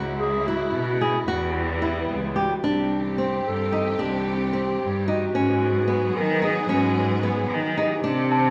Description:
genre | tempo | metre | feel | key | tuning
contemporary instrumental, chamber music in an uneven meter | 222 BPM (eighths) | 5/8 | straight | unclear | A4 = 440 Hz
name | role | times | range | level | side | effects
warm symphonic string section | sustained chords | 0.0-8.5 s | C#3 to G#4 | -32 LUFS | equal | none
flamenco guitar | arpeggios | 0.0-8.4 s | B3 to G#4 | -28 LUFS | equal | none
clear cello | bass | 0.0-8.5 s | C2 to D#3 | -28 LUFS | equal | none
glockenspiel with rubber mallets | texture | 0.0-0.2, 8.3-8.5 s | A5 to A#5 | -31 LUFS | equal | none
dark clarinet | melody | 0.2-8.5 s | E4 to A#4 | -30 LUFS | equal | none
room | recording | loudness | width
moderate recital hall reverb, RT60 1.6 s | none | -24 LUFS | mono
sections
0.0-2.6 A section; 2.6-8.5 B section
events
none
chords
0.0 C#m; 1.3 Em; 2.6 Cm; 5.3 G#m7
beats
0.21 0.48 0.75 1.02 | 1.29 1.56 1.83 2.10 2.37 | 2.64 2.91 3.18 3.45 3.72 | 3.99 4.26 4.53 4.80 5.08 | 5.34 5.62 5.89 6.16 6.43 | 6.70 6.97 7.24 7.51 7.78 | 8.05 8.32

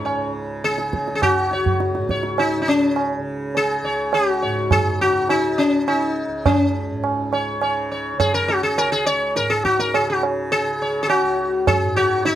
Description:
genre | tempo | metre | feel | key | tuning
indian classical, Hindustani | 103 BPM | 3/4 | straight | unclear | A4 = 445 Hz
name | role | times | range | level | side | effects
sitar | melody | 0.0-12.4 s | Db4 to Db5 | -19 LUFS | left 2 dB | none
tanpura | drone | 0.0-12.4 s | Db2 to Db3 | -29 LUFS | right 2 dB | none
tabla | percussion | 0.1-12.4 s | none | -22 LUFS | right 4 dB | none
room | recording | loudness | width
light reverb | none | -18 LUFS | side -12 dB against mid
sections
0.0-12.4 A section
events
none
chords
none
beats
0.06 0.64 | 1.23 1.81 2.39 | 2.97 3.55 4.14 | 4.72 5.30 5.88 | 6.46 7.04 7.62 | 8.20 8.78 9.36 | 9.94 10.52 11.10 | 11.68 12.26

